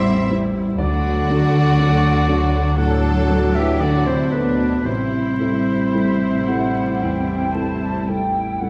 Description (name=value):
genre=cinematic, emotional film score for orchestra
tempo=55-61 BPM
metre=4/4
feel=rubato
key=A dorian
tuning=A4 = 440 Hz
part: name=rich studio violin section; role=melody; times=0.0-8.1 s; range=D4 to E5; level=-31 LUFS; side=equal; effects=none
part: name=clear oboe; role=second line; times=0.0-8.1 s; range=B4 to C6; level=-30 LUFS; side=equal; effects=none
part: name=rich studio violin section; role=second line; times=0.0-8.0 s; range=D4 to E5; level=-33 LUFS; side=equal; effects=none
part: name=rich studio viola section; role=accompaniment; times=0.0-8.7 s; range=F#3 to E4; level=-29 LUFS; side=equal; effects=none
part: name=warm grand piano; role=accompaniment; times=0.0-8.7 s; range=A1 to D6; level=-25 LUFS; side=equal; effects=none
part: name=mellow French horn section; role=sustained chords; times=0.0-8.1 s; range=B3 to C5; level=-27 LUFS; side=equal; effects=none
part: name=clear studio cello section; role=bass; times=0.0-8.0 s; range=B2 to C4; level=-26 LUFS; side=equal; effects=none
part: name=clear studio double bass section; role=bass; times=0.0-8.7 s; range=A1 to D2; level=-26 LUFS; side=equal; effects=none
part: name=bright flute section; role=second line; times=5.9-8.7 s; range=E5 to A5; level=-28 LUFS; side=equal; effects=none
room=moderate scoring stage reverb, RT60 1.4 s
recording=vinyl crackle, small room ambience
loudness=-19 LUFS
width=mono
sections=0.0-8.7 A section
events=none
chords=0.0 Am7; 0.8 D; 4.9 Am7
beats=| 0.80 1.79 2.79 3.81 | 4.86 5.94 7.01 8.08